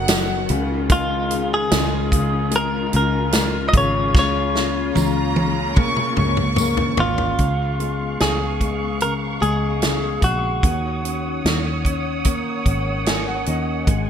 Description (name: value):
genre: pop ballad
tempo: 74 BPM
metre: 4/4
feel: straight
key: Eb minor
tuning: A4 = 443 Hz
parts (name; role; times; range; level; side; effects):
- warm studio violin section; second line; 0.0-7.3 s; F#5 to Db6; -26 LUFS; equal; none
- clear grand piano; accompaniment; 0.0-14.1 s; B2 to Ab5; -25 LUFS; left 5 dB; lush chorus
- warm studio string section; sustained chords; 0.0-14.1 s; Db3 to Eb6; -29 LUFS; right 3 dB; none
- fingered electric bass; bass; 0.0-14.1 s; F#1 to Eb2; -24 LUFS; equal; none
- natural country drum kit; drums; 0.1-14.1 s; hi-hat, kick drum, snare drum, toms; -20 LUFS; equal; gated reverb
- tambourine; percussion; 0.1-6.8 s; none; -32 LUFS; right 8 dB; none
- direct-recorded clean electric guitar; melody; 0.9-11.4 s; F4 to Eb5; -23 LUFS; equal; lush chorus, ping-pong delay
room: light reverb, small room ambience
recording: bright 1980s-style digital production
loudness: -18 LUFS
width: side -8 dB against mid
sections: 0.0-7.4 A section; 7.4-14.1 B section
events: drum fill 4.1-7.4; grand piano fill 12.7-13.9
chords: 0.5 Dbadd9; 4.1 Bbm/Db; 7.4 Db7; 10.6 Ebm7